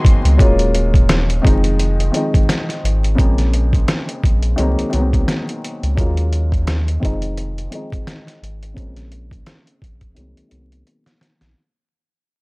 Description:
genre	hip hop, boom-bap hip-hop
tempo	86 BPM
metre	4/4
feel	swing 57% on 16ths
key	Eb dorian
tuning	A4 = 440 Hz
part	warm upright piano	accompaniment	0.0-11.6 s	Db3 to F4	-22 LUFS	left 1 dB	high-pass filter, low-pass filter
part	trip hop sampler-style drum kit	drums	0.0-11.6 s	hi-hat, kick drum, snare drum	-16 LUFS	equal	none
part	warm sub bass	bass	0.2-11.5 s	Eb1 to Eb2	-17 LUFS	equal	none
room	small room ambience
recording	dry, gritty hardware recording, vinyl crackle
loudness	-14 LUFS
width	side -27 dB against mid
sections	0.4-11.6 A section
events	fade-out 0.4-11.6; filter sweep on upright piano 0.4-11.6; drum fill 10.2-11.6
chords	0.4 Ebm11; 1.4 Fm7; 3.2 Bbm9; 4.6 Ab7/C; 6.0 Ebm11; 7.0 Fm7; 8.8 Bbm9; 10.2 Ab7/C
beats	| 0.39 1.09 1.79 2.49 | 3.18 3.88 4.58 5.28 | 5.97 6.67 7.37 8.07 | 8.77 9.46 10.16 10.86

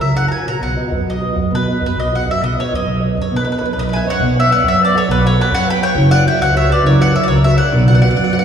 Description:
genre	italian folk, Italian serenade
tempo	135 BPM (dotted quarters)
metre	6/8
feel	straight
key	B major, B minor from 4.2 s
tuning	A4 = 440 Hz
part	mandolin	melody	0.0-8.4 s	B4 to B5	-17 LUFS	left 1 dB	none
part	nylon-string guitar	accompaniment	0.0-8.4 s	C#3 to F#5	-19 LUFS	right 2 dB	none
part	upright bass	bass	0.0-8.4 s	F#1 to F#2	-16 LUFS	equal	none
part	rich violin	second line	3.8-8.4 s	F#4 to G5	-22 LUFS	right 1 dB	none
room	wet concert hall reverb, RT60 2.2 s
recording	recorded in a church or concert hall, studio reverb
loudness	-12 LUFS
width	side -8 dB against mid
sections	0.0-4.2 A section; 4.2-8.4 B section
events	none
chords	0.0 F#; 0.6 B; 2.4 Badd9; 4.2 Bsus2; 6.0 F#sus4; 6.8 F#; 7.7 Bm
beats	0.16 | 0.62 1.07 | 1.52 1.97 | 2.42 2.87 | 3.31 3.76 | 4.21 4.66 | 5.10 5.53 | 5.97 6.41 | 6.84 7.28 | 7.73 8.16

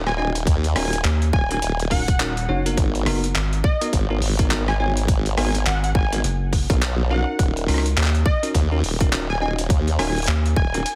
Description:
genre	glitch hop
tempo	104 BPM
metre	4/4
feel	swing 60% on 16ths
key	Eb minor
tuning	A4 = 436 Hz
part	formant-sweep wobble bass	bass	0.0-10.8 s	Eb1 to Eb2	-25 LUFS	equal	chorus, tube saturation
part	plucky unison lead	melody	0.1-11.0 s	Eb5 to Ab5	-30 LUFS	equal	subtle chorus, dub echo
part	boom bap sampler-style drum kit	drums	0.1-11.0 s	handclaps, hi-hat, rim click	-29 LUFS	equal	overdrive
part	bell-like tine electric piano	stabs	0.2-10.8 s	Cb4 to Eb5	-30 LUFS	equal	sidechain pumping, dub echo
part	electronic kick drum	drums	0.5-10.7 s	none	-22 LUFS	equal	none
part	rubbery square bass	bass	1.0-10.5 s	Eb1 to Eb2	-23 LUFS	equal	tube saturation
room	light reverb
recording	heavily compressed radio sound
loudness	-21 LUFS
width	mono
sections	0.0-11.0 A section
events	none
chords	0.0 Ebm7; 2.8 Abm9; 7.4 Ebm7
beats	| 0.47 1.05 1.62 2.20 | 2.78 3.35 3.93 4.51 | 5.08 5.66 6.24 6.82 | 7.39 7.97 8.55 9.12 | 9.70 10.28 10.85

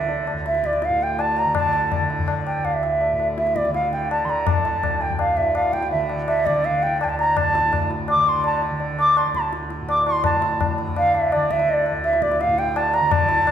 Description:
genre	indian classical, Hindustani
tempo	166 BPM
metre	4/4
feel	straight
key	unclear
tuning	A4 = 441 Hz
part	bansuri	melody	0.0-13.5 s	D5 to D6	-20 LUFS	right 1 dB	none
part	tanpura	drone	0.0-13.5 s	D2 to D3	-27 LUFS	right 2 dB	none
part	tabla	percussion	0.1-13.5 s	none	-26 LUFS	left 4 dB	none
room	wet recital hall reverb, RT60 1.5 s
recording	recorded in a church or concert hall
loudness	-18 LUFS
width	side -9 dB against mid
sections	0.0-10.2 A section; 10.2-13.5 B section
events	none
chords	none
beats	| 0.09 0.46 0.82 1.19 | 1.55 1.92 2.28 2.65 | 3.01 3.37 3.74 4.10 | 4.46 4.83 5.19 5.55 | 5.92 6.28 6.64 7.00 | 7.36 7.72 8.09 8.45 | 8.81 9.17 9.53 9.89 | 10.25 10.61 10.96 11.32 | 11.68 12.04 12.40 12.76 | 13.12 13.47

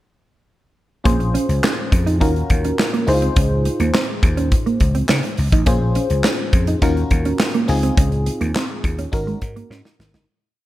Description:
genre	early-eighties boogie funk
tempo	104 BPM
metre	4/4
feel	straight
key	Db major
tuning	A4 = 440 Hz
part	FM electric piano	accompaniment	1.0-10.3 s	C4 to C5	-24 LUFS	left 2 dB	chorus, phaser
part	mellow electric guitar	riff	1.1-10.2 s	Ab3 to Eb4	-24 LUFS	right 4 dB	wide subtle chorus
part	vintage slap bass	bass	1.1-10.2 s	G1 to Db3	-20 LUFS	equal	none
part	modern studio drum kit	drums	1.1-10.3 s	handclaps, hi-hat, kick drum, snare drum	-19 LUFS	equal	gated reverb
room	small room ambience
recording	none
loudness	-16 LUFS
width	side -15 dB against mid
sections	1.1-10.3 verse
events	fade-out 8.0-10.3; drum fill 9.7-10.3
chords	1.1 Bbm9; 2.2 Ebm9; 3.1 Dbmaj9; 5.7 Bbm9; 6.8 Ebm9; 7.7 Dbmaj9; 9.1 Ab9sus4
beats	| 1.05 1.63 2.21 2.79 | 3.36 3.94 4.52 5.09 | 5.67 6.25 6.82 7.40 | 7.98 8.55 9.13 9.71

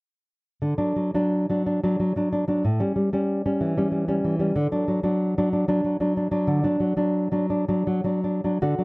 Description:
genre	romantic piece for solo classical guitar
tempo	74-98 BPM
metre	3/4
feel	rubato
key	D major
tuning	A4 = 440 Hz
part	nylon-string guitar	solo	0.6-8.8 s	A2 to F#4	-21 LUFS	equal	none
room	moderate booth ambience, RT60 0.2 s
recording	dark, warm production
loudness	-21 LUFS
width	side -25 dB against mid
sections	0.6-8.6 A section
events	none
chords	0.6 D; 2.6 A7 (rootless); 4.5 D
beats	| 0.61 1.32 1.99 | 2.64 3.29 3.92 | 4.54 5.20 5.84 | 6.48 7.15 7.86 | 8.62

